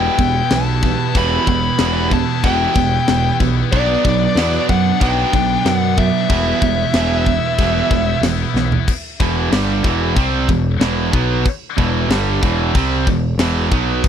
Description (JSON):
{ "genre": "heavy metal", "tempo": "93 BPM", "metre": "4/4", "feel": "straight", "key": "E minor", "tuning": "A4 = 440 Hz", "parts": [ { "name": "high-gain lead guitar", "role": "melody", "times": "0.0-8.2 s", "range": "D5 to B5", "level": "-20 LUFS", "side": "left 3 dB", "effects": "distortion" }, { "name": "chorused pulse-width pad", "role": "sustained chords", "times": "0.0-8.8 s", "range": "E3 to B4", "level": "-29 LUFS", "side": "left 3 dB", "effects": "none" }, { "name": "distorted electric guitar", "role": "riff", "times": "0.0-14.0 s", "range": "E2 to C4", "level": "-19 LUFS", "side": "right 12 dB", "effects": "overdrive" }, { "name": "scooped high-gain guitar", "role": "riff", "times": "0.0-14.0 s", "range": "E2 to E4", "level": "-23 LUFS", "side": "left 14 dB", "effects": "distortion" }, { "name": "growling picked electric bass", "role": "bass", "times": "0.0-14.0 s", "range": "E1 to F#2", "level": "-20 LUFS", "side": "left 1 dB", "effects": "overdrive" }, { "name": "tight metal drum kit", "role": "drums", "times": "0.2-14.1 s", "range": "crash cymbal, kick drum, snare drum, toms", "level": "-20 LUFS", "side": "left 1 dB", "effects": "none" } ], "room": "little or no reverb", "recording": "dry, close 1970s-style studio recording", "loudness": "-14 LUFS", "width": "side -8 dB against mid", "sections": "0.0-8.9 A section; 8.9-14.1 B section", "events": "drum fill 8.6-8.9", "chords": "0.0 Em; 3.7 Bm; 6.3 Em" }